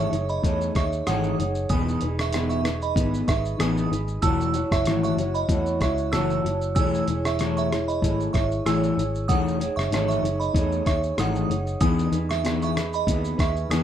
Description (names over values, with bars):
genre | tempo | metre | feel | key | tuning
indie pop, bedroom pop | 95 BPM | 4/4 | swing 55% on 16ths | E major | A4 = 440 Hz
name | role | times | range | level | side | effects
glassy synth bell | second line | 0.0-13.8 s | D#5 to E6 | -29 LUFS | right 6 dB | tremolo, wide subtle chorus, slapback echo
mellow electric guitar | accompaniment | 0.0-13.8 s | E3 to C#5 | -25 LUFS | left 1 dB | lush chorus, warbly pitch drift
vintage muted picked electric bass | bass | 0.0-13.8 s | E1 to E2 | -28 LUFS | equal | none
lo-fi sampler-style drum kit | drums | 0.1-13.8 s | hi-hat, kick drum, rim click, shaker | -27 LUFS | equal | none
room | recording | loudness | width
moderate studio reverb, RT60 0.6 s | rough home demo mix | -21 LUFS | side -10 dB against mid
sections
0.0-13.8 A section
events
none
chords
0.0 Emaj13; 1.7 Emaj7; 4.2 F#m7/E; 6.8 Amaj7/E; 9.3 Emaj13; 11.8 Emaj7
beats
0.44 1.07 | 1.71 2.34 2.97 3.60 | 4.23 4.87 5.50 6.13 | 6.76 7.39 8.02 8.65 | 9.29 9.92 10.55 11.18 | 11.81 12.45 13.08 13.71